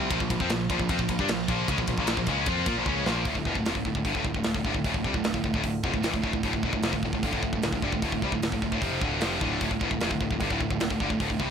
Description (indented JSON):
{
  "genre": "heavy metal",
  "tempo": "151 BPM",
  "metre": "4/4",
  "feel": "straight",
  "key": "D minor",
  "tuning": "A4 = 440 Hz",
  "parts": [
    { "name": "pipe organ, flutes", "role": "sustained chords", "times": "0.0-11.5 s", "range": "D3 to F4", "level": "-39 LUFS", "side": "equal", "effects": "none" },
    { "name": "scooped high-gain guitar", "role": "riff", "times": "0.0-11.5 s", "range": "D2 to F4", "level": "-30 LUFS", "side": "right 10 dB", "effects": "distortion" },
    { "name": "tight distorted guitar", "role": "riff", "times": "0.0-11.5 s", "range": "D2 to F4", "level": "-30 LUFS", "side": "left 14 dB", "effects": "distortion" },
    { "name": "growling picked electric bass", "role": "bass", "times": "0.0-11.5 s", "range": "D1 to Bb2", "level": "-34 LUFS", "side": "equal", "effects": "overdrive" },
    { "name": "tight metal drum kit", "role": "drums", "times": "0.1-11.5 s", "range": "hi-hat, kick drum, ride cymbal, snare drum", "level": "-30 LUFS", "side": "equal", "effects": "none" }
  ],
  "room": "light reverb",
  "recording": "none",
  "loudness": "-25 LUFS",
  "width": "side -7 dB against mid",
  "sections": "0.0-3.3 A section; 3.3-11.5 B section",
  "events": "drum fill 2.9-3.3",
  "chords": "0.1 Bb5; 3.3 Dm"
}